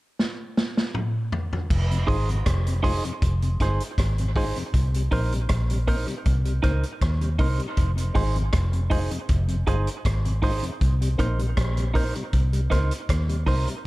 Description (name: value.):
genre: dub reggae.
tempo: 79 BPM.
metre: 4/4.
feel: straight.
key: F minor.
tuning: A4 = 441 Hz.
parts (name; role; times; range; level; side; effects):
vintage drum kit; drums; 0.2-13.8 s; crash cymbal, hi-hat, kick drum, rim click, snare drum, toms; -25 LUFS; equal; none.
vintage muted fingered electric bass; bass; 1.7-13.7 s; F1 to Eb2; -23 LUFS; equal; none.
mellow tonewheel organ; accompaniment; 1.9-13.7 s; F2 to F4; -34 LUFS; left 2 dB; overdrive, chorus vibrato, slow rotary speaker.
clean electric guitar; accompaniment; 2.1-13.7 s; Eb4 to C5; -30 LUFS; right 3 dB; dub echo.
room: light reverb, studio reverb.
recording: echo-heavy mix.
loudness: -21 LUFS.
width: side -19 dB against mid.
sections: 0.0-1.7 A section; 1.7-13.9 B section.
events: drum fill 0.2-1.7.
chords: 0.0 N.C.; 1.7 Fm7; 4.7 Cm7; 7.8 Fm7; 10.8 Cm7.